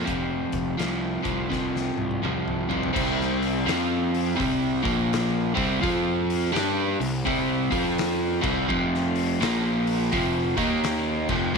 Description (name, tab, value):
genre	blues rock power trio and southern rock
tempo	84 BPM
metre	4/4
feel	swing 63% on 8ths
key	unclear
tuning	A4 = 440 Hz
part	overdriven electric guitar	riff	0.0-11.6 s	F2 to G4	-24 LUFS	equal	spring reverb
part	fuzz picked electric bass	bass	0.0-11.5 s	F1 to G2	-30 LUFS	right 1 dB	overdrive
part	oversized low-tuned drum kit	drums	0.1-11.6 s	crash cymbal, hi-hat, kick drum, snare drum, toms	-32 LUFS	left 4 dB	none
room	studio reverb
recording	1960s-style stereo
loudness	-22 LUFS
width	side -4 dB against mid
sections	0.0-3.0 A section; 3.0-11.6 B section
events	drum fill 1.5-3.0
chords	0.1 F5; 3.0 C5; 3.7 F5; 4.4 C5; 4.8 Bb5; 5.5 C5; 5.8 F5; 6.5 C5; 7.6 F5; 8.3 C5; 8.7 F5; 9.4 Bb5; 10.1 F5; 10.5 Eb5; 11.2 F5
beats	| 0.08 0.80 1.52 2.24 | 2.96 3.68 4.39 5.11 | 5.83 6.55 7.26 7.98 | 8.70 9.41 10.13 10.84 | 11.56